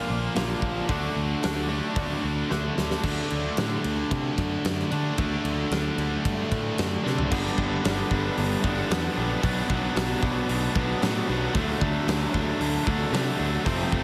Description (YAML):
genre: quiet-loud alternative rock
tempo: 113 BPM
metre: 4/4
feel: straight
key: unclear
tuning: A4 = 440 Hz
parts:
  - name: twangy electric guitar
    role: arpeggios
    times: 0.0-3.0 s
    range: Bb2 to F#4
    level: -37 LUFS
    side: equal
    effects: tremolo
  - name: overdriven electric guitar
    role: riff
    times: 0.0-14.0 s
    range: F2 to D4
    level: -30 LUFS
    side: equal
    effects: none
  - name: scooped high-gain guitar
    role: riff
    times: 0.0-7.3 s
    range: Bb2 to D4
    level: -37 LUFS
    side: equal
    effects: distortion
  - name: fuzz fingered electric bass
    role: bass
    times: 0.1-14.0 s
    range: F1 to D3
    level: -32 LUFS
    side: equal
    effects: overdrive
  - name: huge arena drum kit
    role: drums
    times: 0.4-14.0 s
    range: crash cymbal, hi-hat, kick drum, ride cymbal, snare drum, toms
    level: -32 LUFS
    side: equal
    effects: none
  - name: cranked stack guitar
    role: riff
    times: 7.3-14.0 s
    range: F2 to D4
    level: -33 LUFS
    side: equal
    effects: overdrive
room: light reverb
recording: heavily compressed radio sound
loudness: -26 LUFS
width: mono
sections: 0.0-3.0 A section; 3.0-7.3 B section; 7.3-14.0 C section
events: drum fill 2.5-3.0, 7.0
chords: 0.0 Bb; 0.9 D; 7.3 G; 9.4 Bm; 11.5 D